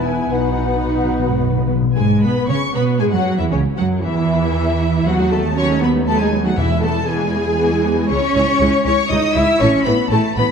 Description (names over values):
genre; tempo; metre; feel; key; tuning
quick classical-period movement for symphony orchestra; 117 BPM; 3/4; rubato; E major; A4 = 441 Hz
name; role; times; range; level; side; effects
rich studio violin section; melody; 0.0-10.5 s; C#5 to E6; -24 LUFS; left 5 dB; none
mellow cor anglais; second line; 0.0-1.7 s; B4; -31 LUFS; left 2 dB; none
warm clarinet; second line; 0.0-1.7 s; D#4 to E4; -28 LUFS; left 1 dB; none
warm studio violin section; second line; 0.0-10.5 s; C#4 to E5; -22 LUFS; left 2 dB; none
rich studio viola section; accompaniment; 0.0-10.5 s; C#3 to E4; -22 LUFS; equal; none
warm bassoon; accompaniment; 0.0-1.7 s; B3; -29 LUFS; left 3 dB; none
dark French horn section; sustained chords; 0.0-1.7 s; B3 to E4; -26 LUFS; left 6 dB; none
rich studio cello section; bass; 0.0-10.4 s; E2 to E4; -20 LUFS; right 2 dB; none
rich studio double bass section; bass; 0.0-10.4 s; E1 to C#3; -21 LUFS; right 4 dB; none
mellow hollow concert flute; second line; 0.1-1.4 s; F#5 to G#5; -28 LUFS; left 3 dB; none
timpani; percussion; 0.3-1.9, 6.6-7.3 s; E2 to B2; -22 LUFS; left 4 dB; none
room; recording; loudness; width
moderate scoring stage reverb, RT60 1.7 s; dark, warm production; -14 LUFS; side -6 dB against mid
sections
0.0-2.0 A section; 2.0-10.5 B section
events
timpani fill 0.3-2.0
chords
0.3 B; 2.0 E/G#; 3.5 F#5/C#; 5.1 B7/D#; 6.6 E; 8.1 C#m; 9.6 A